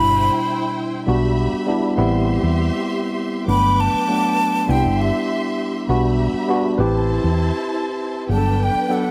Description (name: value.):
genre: soul.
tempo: 100 BPM.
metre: 4/4.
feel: straight.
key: unclear.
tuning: A4 = 439 Hz.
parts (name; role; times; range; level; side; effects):
breathy jazz flute; melody; 0.0-9.1 s; E5 to B5; -22 LUFS; equal; none.
warm studio string section; second line; 0.0-9.1 s; D4 to D6; -29 LUFS; equal; none.
tine electric piano; accompaniment; 0.0-9.1 s; B2 to B4; -23 LUFS; equal; none.
hollow-body short-scale fingered electric bass; bass; 0.0-8.8 s; G1 to E2; -22 LUFS; equal; none.
room: light reverb.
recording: none.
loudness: -19 LUFS.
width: mono.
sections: 0.0-9.1 A section.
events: none.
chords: 0.0 Cmaj7; 1.1 Em7/B; 2.0 Am9; 3.5 Gmaj7; 4.7 Cmaj7; 5.9 Em7/B; 6.8 Am9; 8.3 Gmaj7.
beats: 0.47 | 1.07 1.67 2.28 2.88 | 3.48 4.08 4.68 5.29 | 5.89 6.49 7.09 7.69 | 8.29 8.90.